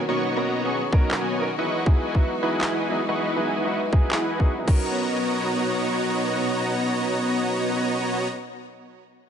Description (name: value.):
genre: future bass.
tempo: 160 BPM.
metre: 4/4.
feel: half-time.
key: B major.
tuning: A4 = 440 Hz.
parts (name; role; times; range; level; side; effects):
clear studio string section; sustained chords; 0.0-8.3 s; B2 to A#4; -32 LUFS; left 1 dB; sidechain pumping.
warm concert grand piano; accompaniment; 0.1-8.3 s; F#3 to A#4; -29 LUFS; right 1 dB; sidechain pumping, ping-pong delay.
dense compressed supersaw; riff; 0.1-8.3 s; B3 to C#6; -24 LUFS; equal; sidechain pumping, low-pass filter, ping-pong delay.
electronic kick drum; drums; 0.9-4.8 s; none; -19 LUFS; equal; none.
trap drum kit; drums; 1.1-4.8 s; crash cymbal, handclaps; -31 LUFS; equal; none.
room: moderate lush hall reverb, RT60 2.1 s.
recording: nothing above 10.8 kHz.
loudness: -21 LUFS.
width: side -8 dB against mid.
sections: 0.0-4.9 A section; 4.9-7.9 B section.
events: none.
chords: 0.0 Bmaj7; 1.7 Emaj9; 4.7 Bmaj7.